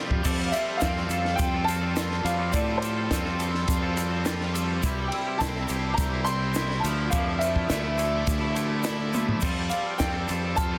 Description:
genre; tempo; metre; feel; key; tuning
indie rock; 104 BPM; 4/4; straight; unclear; A4 = 440 Hz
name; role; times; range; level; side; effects
overdriven combo organ; sustained chords; 0.0-10.8 s; E4 to A5; -44 LUFS; equal; none
overdriven electric guitar; riff; 0.0-10.8 s; F3 to A4; -37 LUFS; equal; ensemble chorus
twangy electric guitar; riff; 0.0-10.8 s; C3 to A4; -35 LUFS; equal; spring reverb
growling fingered electric bass; bass; 0.1-10.8 s; C2 to A2; -31 LUFS; equal; overdrive
compact cocktail drum kit; drums; 0.1-10.7 s; crash cymbal, kick drum, ride cymbal, snare drum, toms; -32 LUFS; equal; none
tube shaker; percussion; 0.2-10.7 s; none; -41 LUFS; equal; none
clear upright piano; melody; 0.5-10.8 s; C5 to C6; -32 LUFS; equal; none
glockenspiel with hard plastic mallets; second line; 0.5-10.8 s; A5 to G6; -43 LUFS; equal; none
room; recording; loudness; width
light reverb; dense, heavily limited modern master; -26 LUFS; mono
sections
0.3-10.8 A section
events
drum fill 0.0, 9.1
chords
0.3 Fadd9; 4.8 C; 6.8 Dmadd9; 9.4 Fadd9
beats
| 0.25 0.82 1.40 1.97 | 2.54 3.11 3.69 4.26 | 4.83 5.41 5.98 6.56 | 7.13 7.71 8.28 8.86 | 9.43 10.01 10.58

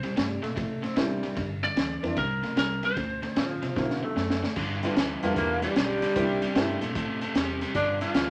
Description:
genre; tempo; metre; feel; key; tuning
electric blues shuffle; 150 BPM; 4/4; swing 66% on 8ths; unclear; A4 = 442 Hz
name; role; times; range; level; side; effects
lightly driven lead guitar; melody; 0.0-4.0 s; Bb4 to D5; -33 LUFS; equal; none
overdriven electric guitar; riff; 0.0-8.3 s; G2 to B3; -35 LUFS; equal; none
vintage muted fingered electric bass; bass; 0.0-8.3 s; G1 to C3; -39 LUFS; equal; none
crunchy breakbeat drum kit; drums; 0.0-8.3 s; crash cymbal, hi-hat, kick drum, ride cymbal, snare drum; -32 LUFS; equal; none
growling tenor saxophone; second line; 0.2-8.3 s; F3 to F4; -32 LUFS; equal; none
warm upright piano; accompaniment; 1.0-6.8 s; F#3 to C5; -34 LUFS; equal; none
room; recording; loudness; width
moderate studio reverb, RT60 0.6 s; none; -28 LUFS; mono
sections
0.0-4.6 A section; 4.6-8.3 B section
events
drum fill 3.8-4.6; tenor saxophone solo 4.6-8.3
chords
0.0 C9; 1.4 G5; 2.2 C5; 3.0 D9; 4.6 G9; 6.2 C9; 7.8 G7(no3)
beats
0.17 0.57 0.97 | 1.37 1.77 2.17 2.57 | 2.97 3.37 3.77 4.17 | 4.57 4.96 5.36 5.76 | 6.16 6.56 6.96 7.35 | 7.75 8.15

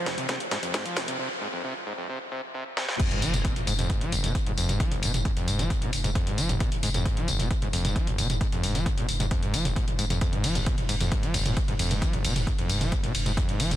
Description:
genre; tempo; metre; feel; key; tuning
driving peak-time techno; 133 BPM; 4/4; straight; F minor; A4 = 440 Hz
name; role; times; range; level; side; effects
screaming distorted acid line; riff; 0.0-13.8 s; F1 to F3; -30 LUFS; equal; distortion, chorus, sidechain pumping, tape echo
overtone-sweeping drone; drone; 0.0-1.2 s; F3; -41 LUFS; right 3 dB; none
techno drum kit; drums; 0.1-13.8 s; crash cymbal, hi-hat, ride cymbal, snare drum, tambourine, toms; -29 LUFS; equal; high-pass filter on snare, sidechain pumping on hats, high-pass filter on hats, sidechain pumping on toms, high-pass filter on toms, sidechain pumping on cymbals, high-pass filter on cymbals, sidechain pumping on perc, high-pass filter on perc, high-pass filter on room
electronic kick drum; drums; 0.3-13.5 s; none; -28 LUFS; equal; high-pass filter on kick, high-pass filter on room
impact; sound effects; 3.0-4.8 s; none; -37 LUFS; equal; none
saturated sub bass; bass; 3.1-13.8 s; F1; -31 LUFS; equal; overdrive, sidechain pumping, low-pass filter
room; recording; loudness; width
light reverb; dense, heavily limited modern master, high-pass filter; -24 LUFS; side -13 dB against mid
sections
0.0-3.0 A section; 3.0-13.8 B section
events
build-up 0.0-3.0; drum fill 0.0-1.2, 2.8; break 1.2-3.0; drop 3.0-13.8; impact 3.0-4.8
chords
0.0 F5; 3.0 Fm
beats
0.29 0.74 | 1.19 1.64 2.09 2.54 | 3.00 3.45 3.90 4.35 | 4.80 5.25 5.70 6.15 | 6.61 7.06 7.51 7.96 | 8.41 8.86 9.31 9.76 | 10.21 10.66 11.12 11.57 | 12.02 12.47 12.92 13.37

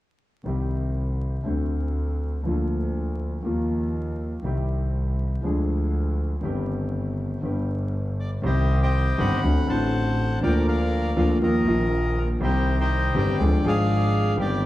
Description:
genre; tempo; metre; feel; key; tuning
tango; 120 BPM; 4/4; rubato; C minor; A4 = 440 Hz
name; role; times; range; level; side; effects
warm concert grand piano; accompaniment; 0.4-14.7 s; G1 to Ab4; -25 LUFS; left 1 dB; none
clear double bass; bass; 0.5-14.7 s; G1 to Eb2; -25 LUFS; equal; none
bandoneon; melody; 8.2-14.6 s; Eb4 to B5; -27 LUFS; equal; plate reverb
room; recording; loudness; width
wet large studio reverb, RT60 0.9 s; heard from further back in the room, vinyl crackle; -22 LUFS; side -16 dB against mid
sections
0.5-8.4 A section; 8.4-14.7 B section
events
none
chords
0.5 Cm; 1.5 D7; 2.5 Bb/D; 3.4 Ebsus2; 4.4 Cm; 5.4 Ddim; 6.4 Cm/G; 7.4 G; 8.4 Cm; 9.4 D7; 10.4 Bb/D; 11.4 Ebsus2; 12.4 Cm; 13.4 Ddim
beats
| 0.46 0.96 1.46 1.96 | 2.45 2.95 3.45 3.95 | 4.45 4.94 5.44 5.94 | 6.43 6.93 7.43 7.93 | 8.43 8.93 9.43 9.93 | 10.43 10.92 11.42 11.91 | 12.41 12.90 13.39 13.89 | 14.39

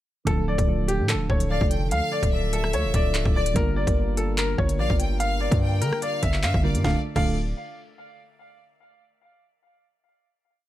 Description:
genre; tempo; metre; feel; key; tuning
hip hop, drill; 146 BPM; 4/4; half-time; D minor; A4 = 440 Hz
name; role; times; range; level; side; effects
bright concert grand piano; melody; 0.3-7.3 s; G4 to F5; -28 LUFS; left 2 dB; low-pass filter, tape echo
soft electric-piano-like synth keys; accompaniment; 0.3-7.3 s; D3 to Bb4; -30 LUFS; right 2 dB; chorus, low-pass filter
mellow French horn section; sustained chords; 0.3-7.0 s; D3 to Bb4; -36 LUFS; left 2 dB; none
hard-hitting 808-style bass; bass; 0.3-7.5 s; C#1 to D3; -25 LUFS; equal; none
drill drum kit; drums; 0.3-7.2 s; crash cymbal, handclaps, hi-hat, kick drum, rim click, snare drum; -25 LUFS; equal; none
clear studio violin section; second line; 1.5-7.3 s; D5 to G5; -34 LUFS; equal; tape echo
room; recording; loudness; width
studio ambience; none; -21 LUFS; side -14 dB against mid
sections
0.3-6.8 hook; 6.8-8.5 final chord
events
none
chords
0.3 Dm; 3.6 Gm7; 6.8 Dm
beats
| 0.27 0.68 1.09 1.50 | 1.91 2.32 2.73 3.15 | 3.56 3.97 4.38 4.79 | 5.20 5.61 6.02 6.43 | 6.84 7.26

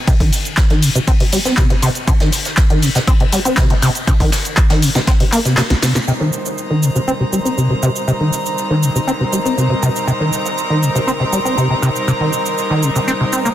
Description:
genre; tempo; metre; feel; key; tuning
acid house; 120 BPM; 4/4; straight; C minor; A4 = 440 Hz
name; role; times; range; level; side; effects
deep acid bass; riff; 0.1-13.5 s; C2 to C4; -16 LUFS; equal; lush chorus, sidechain pumping, tape echo
electronic kick drum; drums; 0.1-5.2 s; none; -14 LUFS; equal; overdrive
punchy analog drum machine; drums; 0.1-13.5 s; cabasa, handclaps, hi-hat, snare drum; -21 LUFS; equal; overdrive
vintage brush drum kit; drums; 0.1-13.5 s; hi-hat, ride cymbal, snare drum; -28 LUFS; left 2 dB; sidechain pumping on cymbals, high-pass filter on cymbals, low-pass filter on cymbals, sidechain pumping on hats, high-pass filter on hats, low-pass filter on hats, soft clipping on snare, high-pass filter on snare, low-pass filter on snare, high-pass filter on room, low-pass filter on room
clear chamber string section; sustained chords; 6.1-13.5 s; G3 to Bb4; -24 LUFS; equal; sidechain pumping, low-pass filter
rich chamber string section; texture; 6.1-13.5 s; Eb4 to Bb5; -22 LUFS; right 1 dB; sidechain pumping
room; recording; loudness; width
light reverb; dense, heavily limited modern master; -13 LUFS; side -12 dB against mid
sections
0.0-6.1 A section; 6.1-13.5 B section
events
kick drops out 5.6-6.1; drum fill 5.6-6.1; band accent 6.0; filter sweep on string section 6.1-13.5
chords
0.0 Cm; 6.1 Cm7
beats
| 0.07 0.57 1.07 1.57 | 2.08 2.58 3.08 3.58 | 4.08 4.58 5.08 5.58 | 6.08 6.58 7.08 7.58 | 8.07 8.57 9.07 9.57 | 10.07 10.57 11.07 11.57 | 12.07 12.57 13.07

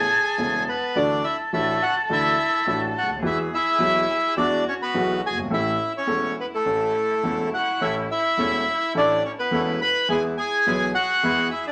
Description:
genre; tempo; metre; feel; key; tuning
tango; 105 BPM; 4/4; rubato; A major; A4 = 440 Hz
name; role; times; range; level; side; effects
bandoneon; melody; 0.0-11.7 s; A3 to B5; -24 LUFS; equal; none
warm cello; second line; 0.0-11.7 s; E4 to A4; -32 LUFS; equal; none
warm concert grand piano; accompaniment; 0.0-11.5 s; E1 to A4; -29 LUFS; equal; none
bandoneon; stabs; 7.8-11.5 s; G#3 to E4; -34 LUFS; equal; none
room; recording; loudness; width
wet studio reverb, RT60 0.6 s; none; -23 LUFS; mono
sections
0.0-11.7 A section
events
none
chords
0.0 Aadd9; 1.0 Dadd9; 3.2 Eadd9; 5.5 A; 10.1 E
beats
0.38 | 0.96 1.53 2.10 2.67 | 3.24 3.81 4.38 4.95 | 5.52 6.09 6.66 7.23 | 7.81 8.39 8.96 9.53 | 10.10 10.67 11.24

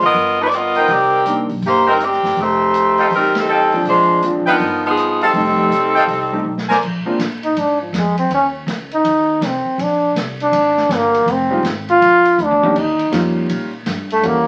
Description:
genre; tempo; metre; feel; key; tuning
jazz, big band swing; 162 BPM; 4/4; swing 64% on 8ths; unclear; A4 = 439 Hz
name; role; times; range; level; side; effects
clear saxophone section; melody; 0.0-6.7 s; F3 to Eb5; -17 LUFS; equal; none
upright bass; bass; 0.0-14.5 s; F1 to Bb2; -28 LUFS; equal; none
swinging big-band drum kit; drums; 0.0-14.3 s; crash cymbal, hi-hat, kick drum, ride cymbal, rim click, snare drum, toms; -30 LUFS; equal; none
clear trumpet section; stabs; 0.8-6.8 s; D#4 to A5; -19 LUFS; equal; none
clear grand piano; accompaniment; 1.3-1.5, 3.7-7.2, 11.5-14.5 s; F3 to G4; -23 LUFS; equal; none
bright trombone; melody; 7.4-14.5 s; F3 to F4; -16 LUFS; equal; none
room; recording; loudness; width
wet studio reverb, RT60 0.6 s; very old 78 rpm record, vinyl crackle; -16 LUFS; mono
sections
0.0-6.8 A section; 6.8-14.5 B section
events
band accent 3.3; drum fill 6.5-6.8, 12.4-12.8; trombone solo 6.8-14.5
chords
0.1 G7alt; 0.9 Cm7; 2.4 F9; 3.9 Bb9; 4.6 Gaug7; 5.3 F9; 6.8 Bb7(no3); 8.3 Cm; 9.8 Bb9; 11.3 Fm7; 12.0 Bb; 12.8 Eb9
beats
0.14 0.51 | 0.89 1.26 1.63 2.00 | 2.37 2.74 3.12 3.49 | 3.86 4.23 4.60 4.97 | 5.34 5.71 6.08 6.46 | 6.83 7.20 7.57 7.94 | 8.31 8.68 9.05 9.42 | 9.79 10.16 10.53 10.90 | 11.27 11.64 12.01 12.38 | 12.75 13.12 13.49 13.86 | 14.23

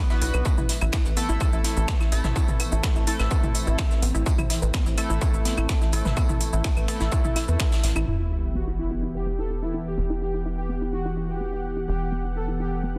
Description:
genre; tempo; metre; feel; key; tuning
melodic techno; 126 BPM; 4/4; straight; E minor; A4 = 440 Hz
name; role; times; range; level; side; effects
lush unison pad; sustained chords; 0.0-13.0 s; E3 to F#5; -36 LUFS; equal; chorus, sidechain pumping
tight sequenced synth; arpeggios; 0.0-13.0 s; B3 to B4; -36 LUFS; equal; chorus, sidechain pumping, tape echo
sync-sweep polysynth; stabs; 0.0-7.8 s; A3 to B4; -35 LUFS; equal; chorus, sidechain pumping, tape echo
deep house drum kit; drums; 0.1-8.1 s; claves, finger snaps, hi-hat, shaker, toms; -33 LUFS; equal; overdrive, soft clipping on snare
jazz brush drum kit; drums; 0.1-8.0 s; hi-hat, snare drum, tambourine; -41 LUFS; equal; sidechain pumping on hats, high-pass filter on hats, soft clipping on snare, high-pass filter on snare, sidechain pumping on perc, high-pass filter on perc, high-pass filter on room
tight sequencer bass; bass; 0.2-13.0 s; E1 to E2; -29 LUFS; equal; sidechain pumping
electronic kick drum; drums; 0.5-7.7 s; none; -26 LUFS; equal; distortion, overdrive
soft supersaw; melody; 8.1-13.0 s; E4 to A4; -35 LUFS; equal; cassette tape, low-pass filter, tape echo
sub drop; sound effects; 8.1-10.0 s; none; -32 LUFS; equal; none
room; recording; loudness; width
light reverb; dense, heavily limited modern master; -25 LUFS; mono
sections
0.0-8.1 A section; 8.1-13.0 B section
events
impact 8.1-10.0; filter sweep on supersaw synth 8.1-13.0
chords
0.5 Am; 8.1 Em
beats
| 0.45 0.93 1.41 1.88 | 2.36 2.83 3.31 3.79 | 4.26 4.74 5.22 5.69 | 6.17 6.64 7.12 7.60 | 8.07 8.55 9.03 9.50 | 9.98 10.45 10.93 11.41 | 11.88 12.36 12.84

